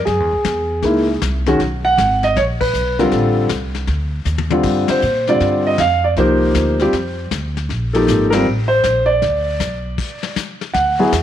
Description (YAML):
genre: jazz piano trio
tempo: 157 BPM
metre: 4/4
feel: swing 65% on 8ths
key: Bb major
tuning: A4 = 440 Hz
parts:
  - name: upright bass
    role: bass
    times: 0.0-11.2 s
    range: Ab1 to Bb2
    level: -21 LUFS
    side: equal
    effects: none
  - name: warm concert grand piano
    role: melody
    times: 0.1-11.1 s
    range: D3 to F#5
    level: -15 LUFS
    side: equal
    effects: none
  - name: vintage brush drum kit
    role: drums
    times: 0.1-11.2 s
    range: brushed snare drum, crash cymbal, hi-hat, kick drum, ride cymbal, snare drum, toms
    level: -26 LUFS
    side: left 6 dB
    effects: none
room: light reverb, studio ambience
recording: 1960s-style stereo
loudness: -14 LUFS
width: side -10 dB against mid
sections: 0.0-10.7 A section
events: band accent 2.5, 4.8, 8.3; drum fill 4.3-4.6; stop 10.0-10.7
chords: 0.1 Gb7sus2 (rootless); 1.6 B5; 3.1 F69/A; 3.9 Ebmaj7(no3)/D; 4.6 Gm7; 6.2 Cm9; 6.9 F5; 7.7 Bbmaj7